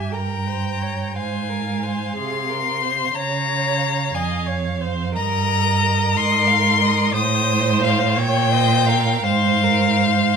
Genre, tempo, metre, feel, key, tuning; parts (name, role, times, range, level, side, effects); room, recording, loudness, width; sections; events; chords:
classical, slow romantic movement for string quartet; 59 BPM (dotted quarters); 6/8; uneven beats, rubato; F minor; A4 = 440 Hz
rich violin; melody; 0.0-10.4 s; F5 to Eb6; -20 LUFS; left 8 dB
rich violin; second line; 0.0-10.4 s; C5 to G5; -29 LUFS; left 1 dB
rich viola; accompaniment; 0.0-10.4 s; G4 to Eb5; -26 LUFS; right 6 dB
rich cello; bass; 0.0-10.4 s; F2 to Db3; -21 LUFS; right 4 dB
light reverb; close, detailed microphones; -17 LUFS; side -6 dB against mid
0.0-10.4 A section
0.0 Gdim; 1.2 Fm/Ab; 3.2 Db; 5.2 Eb/G; 6.2 Ab; 7.1 Adim; 8.2 Bbm; 9.2 Fm/Ab